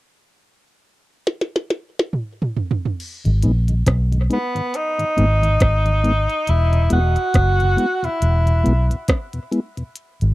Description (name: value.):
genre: dub reggae.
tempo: 69 BPM.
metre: 4/4.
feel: swing 58% on 16ths.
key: G# minor.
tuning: A4 = 439 Hz.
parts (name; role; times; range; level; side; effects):
glitchy drum kit; drums; 1.3-10.3 s; crash cymbal, hi-hat, kick drum, rim click, snare drum, toms; -20 LUFS; right 1 dB; overdrive.
mellow tonewheel organ; accompaniment; 3.2-9.8 s; E2 to E4; -22 LUFS; left 1 dB; stopped rotary speaker.
vintage muted fingered electric bass; bass; 3.3-10.3 s; E1 to B1; -16 LUFS; equal; none.
warm tenor saxophone; melody; 4.3-8.9 s; B3 to F#4; -21 LUFS; equal; dub echo.
room: light reverb.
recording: dry, close 1970s-style studio recording.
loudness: -17 LUFS.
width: side -18 dB against mid.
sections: 0.0-3.0 A section; 3.0-10.3 B section.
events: drum fill 1.3-3.0.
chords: 0.0 N.C.; 3.0 G#m; 6.5 E5.